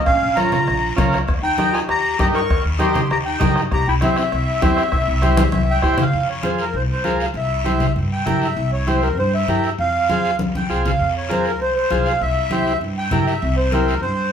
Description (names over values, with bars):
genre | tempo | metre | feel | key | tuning
latin, cumbia | 198 BPM | 4/4 | straight | F harmonic minor from 6.1 s | A4 = 436 Hz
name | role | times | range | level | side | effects
accordion | melody | 0.0-14.3 s | Bb4 to Db6 | -21 LUFS | equal | light tremolo tuning
growling clarinet | second line | 0.0-5.8 s | C4 to Bb4 | -25 LUFS | left 2 dB | none
upright bass | bass | 0.1-14.3 s | Bb1 to G2 | -23 LUFS | equal | none
bombo | percussion | 0.1-6.1 s | none | -24 LUFS | equal | none
congas | percussion | 0.1-14.2 s | none | -24 LUFS | left 2 dB | none
guiro | percussion | 0.1-14.3 s | none | -33 LUFS | left 4 dB | none
combo organ | accompaniment | 0.4-14.0 s | Db4 to C5 | -23 LUFS | right 2 dB | none
room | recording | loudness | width
moderate large studio reverb, RT60 1.1 s | band playing live in one room | -16 LUFS | side -8 dB against mid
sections
0.0-6.1 A section; 6.1-14.3 B section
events
drum fill 5.4-6.1, 10.4-11.0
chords
0.0 Bbm; 1.3 Eb; 3.7 C; 6.1 Fm; 7.4 C7; 9.8 Fm; 12.2 C7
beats
| 0.07 0.37 0.67 0.98 | 1.28 1.58 1.89 2.19 | 2.50 2.80 3.10 3.40 | 3.71 4.01 4.32 4.62 | 4.92 5.22 5.53 5.83 | 6.14 6.44 6.74 7.05 | 7.35 7.66 7.96 8.27 | 8.57 8.87 9.18 9.48 | 9.79 10.09 10.39 10.70 | 11.00 11.31 11.61 11.91 | 12.22 12.52 12.82 13.13 | 13.43 13.73 14.04